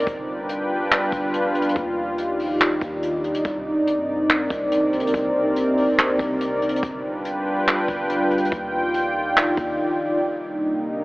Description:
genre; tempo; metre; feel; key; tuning
hip hop, atmospheric cloud-rap; 142 BPM; 4/4; half-time; C minor; A4 = 438 Hz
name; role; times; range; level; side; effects
dark analog pad; sustained chords; 0.0-11.0 s; C3 to G5; -21 LUFS; equal; chorus, sidechain pumping
warm 808-style bass; bass; 0.0-9.8 s; G1 to G2; -37 LUFS; equal; none
jazz brush drum kit; drums; 0.0-9.7 s; handclaps, hi-hat, kick drum; -23 LUFS; equal; none
room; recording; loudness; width
moderate huge ambient reverb, RT60 8.7 s; telephone sound; -20 LUFS; side -21 dB against mid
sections
0.0-10.2 A section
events
break 9.8-10.2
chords
0.1 G7; 1.8 Ebmaj7; 3.4 Cm9; 6.8 G7; 8.5 Ebmaj7; 10.2 Cm9

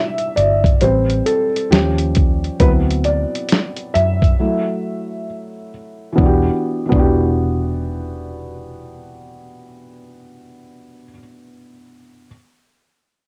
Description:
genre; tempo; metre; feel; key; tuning
lo-fi hip hop; 67 BPM; 4/4; swing 65% on 16ths; E minor; A4 = 440 Hz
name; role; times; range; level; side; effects
felt-muted upright piano; accompaniment; 0.0-12.3 s; E3 to E5; -21 LUFS; equal; low-pass filter, cassette tape
dusty soul sampler-style drum kit; drums; 0.2-7.1 s; hi-hat, kick drum, snare drum; -18 LUFS; equal; cassette tape
vintage muted fingered electric bass; bass; 0.4-11.1 s; E1 to F#2; -22 LUFS; equal; none
room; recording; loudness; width
light reverb; home recording on cassette; -17 LUFS; mono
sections
0.0-6.2 A section; 6.2-9.8 B section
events
felt piano solo 0.0-6.2; break 4.4-6.2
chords
0.0 Em7; 0.8 Am7; 1.7 D#9; 2.6 D13; 4.4 F#m7; 6.2 Em7

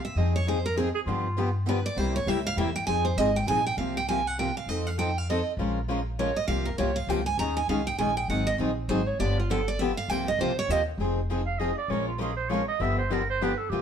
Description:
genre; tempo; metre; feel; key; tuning
acoustic string swing (jazz manouche); 199 BPM; 3/4; swing 60% on 8ths; F minor; A4 = 439 Hz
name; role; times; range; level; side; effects
picked steel-string acoustic guitar; melody; 0.0-10.8 s; F4 to Bb5; -28 LUFS; right 4 dB; none
picked steel-string acoustic guitar; accompaniment; 0.2-13.8 s; C3 to Bb4; -31 LUFS; left 5 dB; none
picked steel-string acoustic guitar; accompaniment; 0.2-13.8 s; C3 to Bb4; -34 LUFS; right 4 dB; none
upright bass; bass; 0.2-13.8 s; F1 to G2; -30 LUFS; equal; none
breathy clarinet; second line; 0.9-1.6, 11.5-13.8 s; F4 to F5; -30 LUFS; right 4 dB; none
room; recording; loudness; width
moderate studio reverb, RT60 0.9 s; band playing live in one room; -25 LUFS; side -8 dB against mid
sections
0.0-3.8 A section; 3.8-11.0 A section; 11.0-13.8 A section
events
steel-string acoustic guitar solo 0.0-11.0; clarinet solo 11.0-13.8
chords
0.2 Fm7; 1.1 G7; 2.0 C7; 2.9 Fm7; 3.8 C7sus4; 4.7 F7; 5.6 Bbm7; 6.5 C7sus4; 7.4 Eb7sus4; 8.3 Ab7; 9.2 G7; 10.1 C7sus4; 11.0 Fm7; 11.9 Bbm7; 12.8 G7

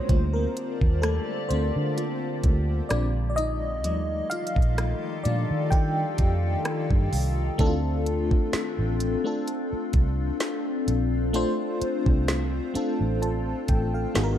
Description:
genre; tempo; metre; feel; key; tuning
contemporary R&B; 64 BPM; 4/4; swing 54% on 16ths; unclear; A4 = 440 Hz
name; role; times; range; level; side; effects
FM electric piano with soft pad layer; accompaniment; 0.0-14.4 s; F3 to A5; -28 LUFS; left 1 dB; chorus, tremolo
glassy FM pad; sustained chords; 0.0-14.4 s; D3 to A5; -32 LUFS; left 3 dB; ensemble chorus, built-in reverb
vintage muted fingered electric bass; bass; 0.1-14.4 s; Ab1 to Eb3; -26 LUFS; equal; none
smooth R&B drum kit; drums; 0.1-14.4 s; hi-hat, kick drum, rim click, snare drum; -24 LUFS; equal; none
room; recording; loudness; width
light reverb, digital ambience; dark, warm production; -23 LUFS; side -10 dB against mid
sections
0.0-7.6 A section; 7.6-14.4 B section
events
FM electric piano solo 0.0-7.6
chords
0.1 Gm9/D; 2.9 Bb9; 3.8 Ebmaj9#11; 7.6 Dm7

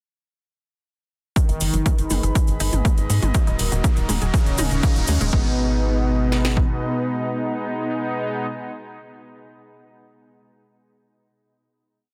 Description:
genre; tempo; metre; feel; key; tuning
melodic techno; 121 BPM; 4/4; straight; G# minor; A4 = 444 Hz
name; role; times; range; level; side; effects
unison lead; melody; 1.4-8.5 s; B3 to D#4; -32 LUFS; equal; subtle chorus, vintage 12-bit sampler grit, sidechain pumping, digital delay
soft supersaw; second line; 1.4-8.5 s; B2 to D#3; -32 LUFS; equal; sidechain pumping, digital delay
sweeping resonant pad; sustained chords; 1.4-8.5 s; G#3 to B5; -35 LUFS; equal; chorus, sidechain pumping
unison pluck; arpeggios; 1.4-5.6 s; F#3 to G#4; -35 LUFS; equal; none
analog synth brass; stabs; 1.4-8.5 s; F#3 to D#4; -32 LUFS; equal; chorus, sidechain pumping, digital delay
techno drum kit; drums; 1.4-6.7 s; kick drum, snare drum; -22 LUFS; equal; none
techno drum kit; drums; 1.4-5.3 s; hi-hat, toms; -31 LUFS; equal; none
cabasa; percussion; 1.4-5.3 s; none; -34 LUFS; equal; none
riser; sound effects; 3.0-5.3 s; none; -36 LUFS; equal; none
tight sequencer bass; bass; 1.5-6.8 s; D#1 to G#2; -25 LUFS; equal; sidechain pumping
room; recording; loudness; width
little or no reverb; dense, heavily limited modern master; -21 LUFS; mono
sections
1.4-5.3 build; 5.3-9.3 final chord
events
build-up 1.4-5.3; filter sweep on synth arpeggio sound 1.4-5.3; filter sweep on analog synth lead 1.4-5.3; filter sweep on analog polysynth 1.4-5.3; riser 3.0-5.3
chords
1.4 G#m; 3.3 D#m; 5.3 G#m

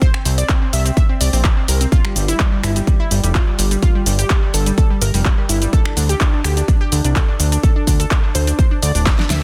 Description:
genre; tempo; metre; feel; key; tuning
progressive house; 126 BPM; 4/4; straight; unclear; A4 = 441 Hz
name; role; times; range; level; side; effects
analog pluck; arpeggios; 0.0-9.4 s; G3 to E5; -26 LUFS; equal; chorus, sidechain pumping, dub echo
deep house drum kit; drums; 0.0-9.4 s; finger snaps, handclaps, hi-hat, shaker, snare drum; -24 LUFS; equal; overdrive, sidechain pumping on hats, small room ambience, sidechain pumping on perc
electronic kick drum; drums; 0.0-9.2 s; none; -18 LUFS; equal; small room ambience
fat analog bass; bass; 0.3-9.4 s; D1 to D2; -19 LUFS; equal; sidechain pumping
room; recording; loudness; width
little or no reverb; dense, heavily limited modern master; -16 LUFS; mono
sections
0.0-9.4 A section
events
drum fill 9.1-9.4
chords
0.0 Bbadd9; 1.9 Fmaj7sus2; 5.7 D7(no3)

